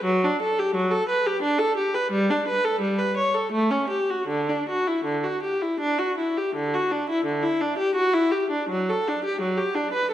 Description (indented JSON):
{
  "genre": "classical, baroque-style suite movement for unaccompanied viola",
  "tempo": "75-88 BPM",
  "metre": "3/4",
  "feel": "rubato",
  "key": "D major",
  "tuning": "A4 = 441 Hz",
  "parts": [
    { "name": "clear viola", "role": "solo", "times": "0.0-10.1 s", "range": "D3 to C#5", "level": "-22 LUFS", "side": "equal", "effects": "none" }
  ],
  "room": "wet recital hall reverb, RT60 1.4 s",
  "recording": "dark, warm production",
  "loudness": "-22 LUFS",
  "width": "side -12 dB against mid",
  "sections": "0.0-6.6 A section; 6.6-10.1 B section",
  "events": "none",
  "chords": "none"
}